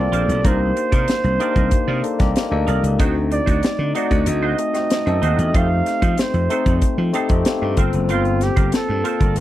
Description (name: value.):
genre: polished 1980s jazz-funk pop.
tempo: 94 BPM.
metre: 4/4.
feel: straight.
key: G minor.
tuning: A4 = 437 Hz.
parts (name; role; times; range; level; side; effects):
breathy flugelhorn; melody; 0.0-9.3 s; F4 to F5; -23 LUFS; right 4 dB; slapback echo.
barky tine electric piano; accompaniment; 0.0-9.4 s; A3 to C6; -23 LUFS; left 4 dB; overdrive, lush chorus.
slap bass; bass; 0.0-9.4 s; F#1 to F3; -20 LUFS; equal; none.
semi-hollow electric guitar; riff; 0.1-9.4 s; Eb4 to Eb5; -28 LUFS; right 7 dB; ensemble chorus.
modern studio drum kit; drums; 0.1-9.4 s; hi-hat, kick drum, snare drum; -20 LUFS; equal; none.
room: light reverb.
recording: dry, close 1970s-style studio recording.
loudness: -16 LUFS.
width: side -13 dB against mid.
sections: 0.0-9.4 A section.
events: tine electric piano fill 6.8-8.1.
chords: 0.4 Cm9; 3.0 D7b9; 5.5 F7; 7.8 Gm11.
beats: | 0.45 1.08 1.72 2.36 | 2.99 3.63 4.27 4.91 | 5.54 6.18 6.82 7.45 | 8.09 8.73 9.37.